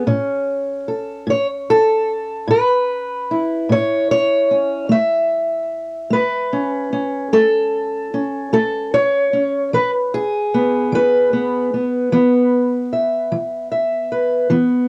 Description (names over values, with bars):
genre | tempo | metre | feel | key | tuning
acoustic country blues, solo or duo | 50 BPM (dotted quarters) | 12/8 | straight | unclear | A4 = 440 Hz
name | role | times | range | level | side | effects
fingerpicked steel-string acoustic guitar | solo | 0.0-14.9 s | A2 to E5 | -18 LUFS | equal | cassette tape
room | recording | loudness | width
wet booth ambience, RT60 0.3 s | home recording on cassette, faint mains hum | -18 LUFS | mono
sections
0.0-14.9 A section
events
none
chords
0.1 A; 9.7 E